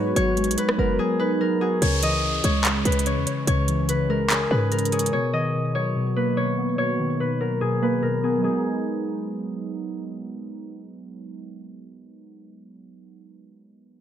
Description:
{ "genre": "hip hop, trap", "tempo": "145 BPM", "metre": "4/4", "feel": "half-time", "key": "G# minor", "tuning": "A4 = 441 Hz", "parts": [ { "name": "concert harp", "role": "melody", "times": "0.0-10.7 s", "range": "G#4 to D#5", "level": "-26 LUFS", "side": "left 2 dB", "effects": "low-pass filter" }, { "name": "gliding portamento lead", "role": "second line", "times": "0.0-1.0 s", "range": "B4 to C#5", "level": "-34 LUFS", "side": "right 4 dB", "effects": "none" }, { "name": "warbly lo-fi synth keys", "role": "accompaniment", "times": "0.0-14.0 s", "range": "B2 to C#5", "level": "-25 LUFS", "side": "right 1 dB", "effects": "chorus, low-pass filter" }, { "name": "dark analog pad", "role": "sustained chords", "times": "0.0-1.8 s", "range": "G#3 to B4", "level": "-33 LUFS", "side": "right 1 dB", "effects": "none" }, { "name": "short 808-style bass", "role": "bass", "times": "0.0-5.1 s", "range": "F#1 to G#2", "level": "-25 LUFS", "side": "equal", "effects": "none" }, { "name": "trap drum kit", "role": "drums", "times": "0.2-5.1 s", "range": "handclaps, hi-hat, rim click", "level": "-25 LUFS", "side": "right 1 dB", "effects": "none" }, { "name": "downlifter", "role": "sound effects", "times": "1.8-5.1 s", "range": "none", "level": "-30 LUFS", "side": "equal", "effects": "none" } ], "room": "light reverb, digital ambience", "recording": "none", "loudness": "-21 LUFS", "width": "side -10 dB against mid", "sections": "0.0-1.8 A section; 1.8-8.4 B section; 8.4-11.8 C section", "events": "drums muted 1.0-1.8; filter sweep 1.8-8.4", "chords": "0.0 G#m7; 1.8 C#m; 5.1 Bmaj7; 8.4 G#m7", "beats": "| 0.17 0.58 0.99 1.41 | 1.82 2.23 2.65 3.06 | 3.48 3.89 4.30 4.72 | 5.13 5.54 5.96 6.37 | 6.79 7.20 7.61 8.03 | 8.44 8.85 9.27 9.68 | 10.10 10.51 10.92 11.34" }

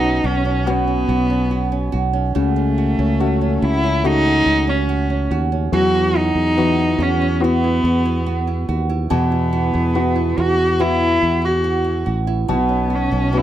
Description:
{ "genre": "pop ballad", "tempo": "71 BPM", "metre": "4/4", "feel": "straight", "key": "unclear", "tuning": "A4 = 445 Hz", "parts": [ { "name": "dark cello", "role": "melody", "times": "0.0-13.4 s", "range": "A3 to F#4", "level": "-19 LUFS", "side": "equal", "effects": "slapback echo" }, { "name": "warm concert grand piano", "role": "accompaniment", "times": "0.0-13.4 s", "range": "B2 to F#4", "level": "-23 LUFS", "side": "left 5 dB", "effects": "none" }, { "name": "nylon-string guitar", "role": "arpeggios", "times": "0.0-13.4 s", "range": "B2 to F#4", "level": "-24 LUFS", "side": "right 11 dB", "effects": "none" }, { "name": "fretless electric bass", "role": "bass", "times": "0.0-13.4 s", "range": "A1 to E2", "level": "-20 LUFS", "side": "equal", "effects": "none" } ], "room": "little or no reverb", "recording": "dry, close 1970s-style studio recording", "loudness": "-15 LUFS", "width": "side -12 dB against mid", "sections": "0.0-13.4 A section", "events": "none", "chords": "0.0 Bsus2; 2.4 A6/C#; 5.7 Esus2; 12.5 Bsus2", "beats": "0.66 1.51 | 2.35 3.20 4.04 4.89 | 5.73 6.58 7.42 8.27 | 9.11 9.96 10.80 11.65 | 12.49 13.34" }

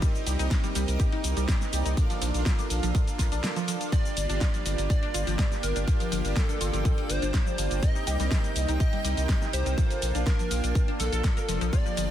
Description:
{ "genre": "progressive house", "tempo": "123 BPM", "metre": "4/4", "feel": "straight", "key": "unclear", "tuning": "A4 = 445 Hz", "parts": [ { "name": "evolving wavetable pad", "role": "sustained chords", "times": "0.0-12.1 s", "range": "C3 to F4", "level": "-38 LUFS", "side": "equal", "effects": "chorus, built-in reverb, sidechain pumping" }, { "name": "tight sequenced synth", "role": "arpeggios", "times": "0.0-12.1 s", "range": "F3 to Bb4", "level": "-35 LUFS", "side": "left 1 dB", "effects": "chorus, phaser, sidechain pumping, ping-pong delay" }, { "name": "soft supersaw", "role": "stabs", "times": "0.0-12.1 s", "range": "Bb3 to A5", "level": "-35 LUFS", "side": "right 3 dB", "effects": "sidechain pumping, ping-pong delay" }, { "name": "electronic kick drum", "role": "drums", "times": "0.0-11.8 s", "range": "none", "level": "-25 LUFS", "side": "equal", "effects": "small room ambience" }, { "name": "pop drum kit", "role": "drums", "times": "0.0-12.1 s", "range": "cabasa, hi-hat, snare drum", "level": "-34 LUFS", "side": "left 1 dB", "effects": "small room ambience" }, { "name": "backwards swelling texture", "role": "texture", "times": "0.0-12.1 s", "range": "D5 to G6", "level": "-44 LUFS", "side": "right 1 dB", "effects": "none" }, { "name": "saturated sub bass", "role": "bass", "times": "0.3-12.1 s", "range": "F1 to C2", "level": "-28 LUFS", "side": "equal", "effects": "tube saturation, sidechain pumping" }, { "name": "plucky unison lead", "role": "melody", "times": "3.9-12.1 s", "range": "A4 to Eb5", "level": "-34 LUFS", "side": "equal", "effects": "sidechain pumping, dub echo" } ], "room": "little or no reverb", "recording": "dense, heavily limited modern master", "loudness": "-24 LUFS", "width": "side -11 dB against mid", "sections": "0.0-12.1 A section", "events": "break 3.4-3.9", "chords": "0.0 Cm7; 2.0 Bbmaj7; 3.9 Gm7; 7.8 Cm7; 9.8 Bbmaj7", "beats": "| 0.02 0.51 1.00 1.49 | 1.97 2.46 2.95 3.44 | 3.92 4.41 4.90 5.39 | 5.88 6.36 6.85 7.34 | 7.83 8.31 8.80 9.29 | 9.78 10.27 10.75 11.24 | 11.73" }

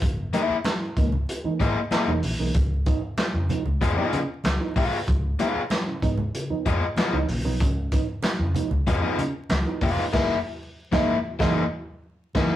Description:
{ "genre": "funk", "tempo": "95 BPM", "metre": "4/4", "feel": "straight", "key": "unclear", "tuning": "A4 = 442 Hz", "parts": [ { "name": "vintage muted fingered electric bass", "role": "bass", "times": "0.0-12.6 s", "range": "E1 to C#3", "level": "-27 LUFS", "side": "equal", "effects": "none" }, { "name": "crunchy breakbeat drum kit", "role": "drums", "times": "0.0-12.6 s", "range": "crash cymbal, handclaps, hi-hat, kick drum, snare drum", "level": "-26 LUFS", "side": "equal", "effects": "none" }, { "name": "congas", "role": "percussion", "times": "0.0-10.0 s", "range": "none", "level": "-34 LUFS", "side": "right 2 dB", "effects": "none" }, { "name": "crunchy overdriven guitar", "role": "accompaniment", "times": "0.3-12.6 s", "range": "A#3 to E#5", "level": "-25 LUFS", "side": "left 4 dB", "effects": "none" }, { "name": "reed electric piano", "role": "stabs", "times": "0.3-12.6 s", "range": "C#3 to D#4", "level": "-30 LUFS", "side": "right 3 dB", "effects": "phaser" } ], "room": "moderate studio reverb, RT60 0.6 s", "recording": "rough rehearsal-room recording, warm saturation, vinyl crackle", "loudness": "-22 LUFS", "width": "side -13 dB against mid", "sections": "0.0-12.6 A section", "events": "band accent 10.1-12.6", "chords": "0.0 F#13 (rootless); 2.5 C#9; 10.1 F#13", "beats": "| 0.02 0.65 1.28 1.92 | 2.55 3.18 3.81 4.44 | 5.08 5.71 6.34 6.97 | 7.61 8.24 8.87 9.50 | 10.14 10.77 11.40 12.04" }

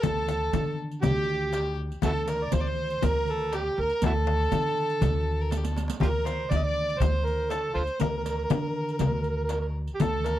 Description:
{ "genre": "Arabic maqam ensemble", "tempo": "120 BPM", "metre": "4/4", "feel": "straight", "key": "D maqam hijaz", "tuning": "A4 = 441 Hz", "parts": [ { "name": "overdriven harmonica", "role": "melody", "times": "0.0-10.4 s", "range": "E4 to Eb5+24c", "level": "-29 LUFS", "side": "right 3 dB", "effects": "none" }, { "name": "rich violin", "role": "second line", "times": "0.0-10.4 s", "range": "G4 to D5", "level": "-36 LUFS", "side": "left 6 dB", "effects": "none" }, { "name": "upright bass", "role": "bass", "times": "0.0-10.4 s", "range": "D2 to D3", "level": "-29 LUFS", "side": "equal", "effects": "none" }, { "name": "darbuka", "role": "percussion", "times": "0.0-10.4 s", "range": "none", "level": "-34 LUFS", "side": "right 1 dB", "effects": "none" }, { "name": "frame drum", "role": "percussion", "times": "0.0-10.4 s", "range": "none", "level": "-31 LUFS", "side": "left 10 dB", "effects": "none" }, { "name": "riq", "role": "percussion", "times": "0.0-10.4 s", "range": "none", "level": "-38 LUFS", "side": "right 8 dB", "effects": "none" } ], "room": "little or no reverb", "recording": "dry, close 1970s-style studio recording", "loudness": "-24 LUFS", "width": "side -13 dB against mid", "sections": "0.0-10.4 A section", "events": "drum fill 5.5-6.0", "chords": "none", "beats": "| 0.03 0.53 1.02 1.52 | 2.02 2.52 3.02 3.52 | 4.01 4.51 5.01 5.51 | 6.01 6.51 7.01 7.51 | 8.01 8.51 9.01 9.50 | 10.00" }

